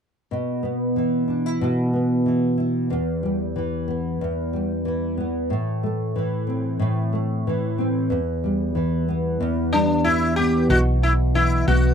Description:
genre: pop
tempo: 92 BPM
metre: 4/4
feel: swing 55% on 16ths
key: E minor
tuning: A4 = 440 Hz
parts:
  - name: nylon-string guitar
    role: accompaniment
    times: 0.3-11.9 s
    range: E2 to F#4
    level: -21 LUFS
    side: equal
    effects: double-tracked left and right
  - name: sitar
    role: melody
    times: 9.7-11.9 s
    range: D4 to G4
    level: -20 LUFS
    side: left 2 dB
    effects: none
  - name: hollow-body short-scale fingered electric bass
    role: bass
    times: 10.7-11.9 s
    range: B1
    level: -19 LUFS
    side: equal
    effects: none
room: light reverb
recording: dry, close 1970s-style studio recording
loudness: -20 LUFS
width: side -7 dB against mid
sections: 0.3-10.7 A section; 10.7-11.9 B section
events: none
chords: 0.3 Bsus4; 2.9 Em; 5.5 Am; 8.1 Em; 10.7 Bsus4

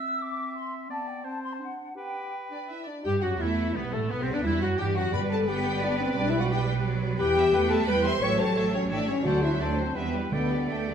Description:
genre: classical, dramatic, fast romantic movement for symphony orchestra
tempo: 173 BPM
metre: 3/4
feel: rubato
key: G major, E minor from 3.1 s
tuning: A4 = 440 Hz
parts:
  - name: clear oboe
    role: second line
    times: 0.0-10.9 s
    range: B3 to E5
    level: -37 LUFS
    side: right 2 dB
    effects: none
  - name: dark clarinet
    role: second line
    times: 0.0-10.9 s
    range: G3 to C#5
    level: -36 LUFS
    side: left 1 dB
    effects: none
  - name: mellow flute section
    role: second line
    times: 0.0-10.9 s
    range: C4 to E6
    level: -36 LUFS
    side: left 1 dB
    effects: none
  - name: warm symphonic violin section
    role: second line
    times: 2.5-10.9 s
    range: G4 to C#6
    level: -35 LUFS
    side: left 1 dB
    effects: none
  - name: mellow French horn section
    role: sustained chords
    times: 2.5-10.9 s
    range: G3 to C#5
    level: -29 LUFS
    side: left 3 dB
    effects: none
  - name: rich symphonic violin section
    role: melody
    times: 3.1-10.9 s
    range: A3 to G5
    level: -36 LUFS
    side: left 2 dB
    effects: none
  - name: rich symphonic viola section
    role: accompaniment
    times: 3.1-10.9 s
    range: C3 to B4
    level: -34 LUFS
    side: right 1 dB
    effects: none
  - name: warm symphonic double bass section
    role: bass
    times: 3.1-10.9 s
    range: G1 to G2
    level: -31 LUFS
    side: right 4 dB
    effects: none
  - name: bright symphonic cello section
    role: bass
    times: 3.4-10.9 s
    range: E3 to B3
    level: -32 LUFS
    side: right 2 dB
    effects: none
  - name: timpani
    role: percussion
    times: 5.1-5.6, 9.3-10.8 s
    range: G2 to D3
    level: -33 LUFS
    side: left 1 dB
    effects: none
room: wet recital hall reverb, RT60 1.4 s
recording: none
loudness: -24 LUFS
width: side -8 dB against mid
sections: 0.0-3.1 A section; 3.1-10.9 B section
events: none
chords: 0.0 C; 0.9 G/B; 1.2 N.C.; 1.6 D7; 2.0 G; 3.1 Em; 4.1 Em/B; 5.1 G; 6.2 G/B; 7.2 Em; 8.2 A7; 9.3 D7; 10.0 Em; 10.3 Dsus4

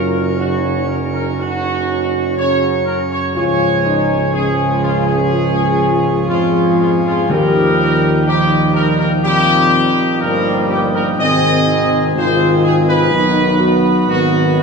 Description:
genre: classical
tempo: 62 BPM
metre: 4/4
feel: straight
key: unclear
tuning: A4 = 437 Hz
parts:
  - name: dark trumpet section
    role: melody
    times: 0.0-14.6 s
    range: F4 to Eb5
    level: -18 LUFS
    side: equal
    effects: none
  - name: bright trombone section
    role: sustained chords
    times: 0.0-14.6 s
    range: Db3 to C4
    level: -22 LUFS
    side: right 2 dB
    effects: none
  - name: mellow French horn section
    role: sustained chords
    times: 0.0-14.6 s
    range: Bb3 to G4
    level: -20 LUFS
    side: left 4 dB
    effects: none
  - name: pipe organ, principal chorus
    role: sustained chords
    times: 0.0-14.6 s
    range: F#2 to Db5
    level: -19 LUFS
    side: left 1 dB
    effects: none
  - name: mellow tuba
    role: bass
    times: 0.0-14.6 s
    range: Gb1 to F2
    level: -19 LUFS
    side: right 3 dB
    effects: none
  - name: timpani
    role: percussion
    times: 7.3-8.7 s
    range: Eb3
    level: -23 LUFS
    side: left 1 dB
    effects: none
room: wet recital hall reverb, RT60 1.3 s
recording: studio reverb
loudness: -12 LUFS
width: side -4 dB against mid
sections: 0.0-14.6 A section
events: none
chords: 0.0 Gb; 3.4 Db; 7.3 Ebadd9; 11.2 Ab; 13.1 B

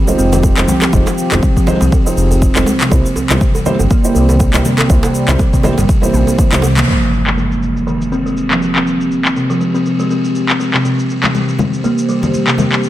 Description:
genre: afro house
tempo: 121 BPM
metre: 4/4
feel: swing 56% on 16ths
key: F minor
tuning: A4 = 440 Hz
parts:
  - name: warm analog pad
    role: sustained chords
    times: 0.0-12.9 s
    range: C3 to C5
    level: -22 LUFS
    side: right 1 dB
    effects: chorus, sidechain pumping
  - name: buzzing kalimba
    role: arpeggios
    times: 0.0-12.8 s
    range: C3 to C4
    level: -16 LUFS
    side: equal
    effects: sidechain pumping, low-pass filter, tape echo
  - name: felt-muted upright piano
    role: stabs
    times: 0.1-6.6 s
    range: Ab3 to C5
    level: -19 LUFS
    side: right 2 dB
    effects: sidechain pumping, tape echo
  - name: house drum kit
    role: drums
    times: 0.1-12.9 s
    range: handclaps, shaker, toms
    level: -19 LUFS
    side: left 1 dB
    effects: overdrive, low-pass filter on perc, low-pass filter on snare, low-pass filter on toms
  - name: djembe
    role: percussion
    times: 0.1-6.7 s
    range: none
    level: -23 LUFS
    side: right 2 dB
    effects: none
  - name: smooth synth bass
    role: bass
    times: 0.2-6.8 s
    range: F1 to C2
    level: -14 LUFS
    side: equal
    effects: sidechain pumping
  - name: congas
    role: percussion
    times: 0.3-6.7, 11.2-12.7 s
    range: none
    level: -21 LUFS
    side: left 4 dB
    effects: none
  - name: electronic kick drum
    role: drums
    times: 0.4-6.5 s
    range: none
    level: -13 LUFS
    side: equal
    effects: overdrive
  - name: impact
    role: sound effects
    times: 6.9-8.9 s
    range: none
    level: -21 LUFS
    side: equal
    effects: none
room: light reverb, small room ambience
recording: none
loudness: -11 LUFS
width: side -14 dB against mid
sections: 0.0-6.9 A section; 6.9-12.9 B section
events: drum fill 6.1-6.9; band accent 6.8; impact 6.9-8.9; filter sweep on kalimba 6.9-12.9; filter sweep on analog synth pad 6.9-12.9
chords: 0.0 Fm7; 2.9 C7; 6.9 Fm; 10.8 C

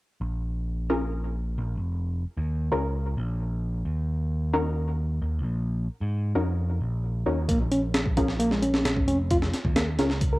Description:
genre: breakbeat, breaks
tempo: 132 BPM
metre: 4/4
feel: straight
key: Bb minor pentatonic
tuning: A4 = 436 Hz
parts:
  - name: overdriven picked electric bass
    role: bass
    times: 0.2-10.4 s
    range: F1 to Ab2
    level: -27 LUFS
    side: equal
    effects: low-pass filter
  - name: orchestra-hit-like synth stab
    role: stabs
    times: 0.9-10.1 s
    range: Db4 to Bb4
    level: -29 LUFS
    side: left 1 dB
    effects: built-in reverb, cassette tape, tape echo
  - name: reed electric piano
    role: riff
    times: 7.5-10.4 s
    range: Ab3 to Bb4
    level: -26 LUFS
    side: equal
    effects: fast tremolo, cassette tape, tape echo
  - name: breakbeat sampler-style drum kit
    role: drums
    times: 7.5-10.3 s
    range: hi-hat, kick drum, snare drum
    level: -26 LUFS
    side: equal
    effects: small room ambience, cassette tape
room: light reverb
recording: home recording on cassette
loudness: -24 LUFS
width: side -20 dB against mid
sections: 0.2-10.4 A section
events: none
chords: 0.2 Bbm; 3.9 Ebm7; 7.5 Bbm7

